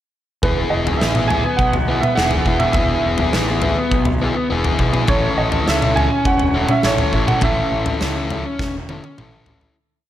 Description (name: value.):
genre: indie rock.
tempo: 103 BPM.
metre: 4/4.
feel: straight.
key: E major.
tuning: A4 = 444 Hz.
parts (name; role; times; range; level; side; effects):
warm upright piano; melody; 0.4-8.6 s; B4 to G#5; -21 LUFS; right 3 dB; slapback echo.
overdriven electric guitar; riff; 0.4-9.8 s; B3 to A4; -20 LUFS; left 3 dB; slapback echo.
fuzz picked electric bass; bass; 0.4-9.7 s; E1 to C#2; -23 LUFS; equal; overdrive.
big rock drum kit; drums; 0.4-9.8 s; kick drum, snare drum, toms; -20 LUFS; equal; none.
room: moderate lush hall reverb, RT60 1.9 s, studio reverb.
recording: big arena sound.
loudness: -15 LUFS.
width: side -12 dB against mid.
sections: 0.4-9.8 verse.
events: fade-out 7.4-9.8; drum fill 8.6-9.8.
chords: 0.4 E; 5.1 A.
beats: | 0.44 1.01 1.59 2.17 | 2.76 3.34 3.92 4.50 | 5.09 5.67 6.26 6.84 | 7.43 8.01 8.60 9.18.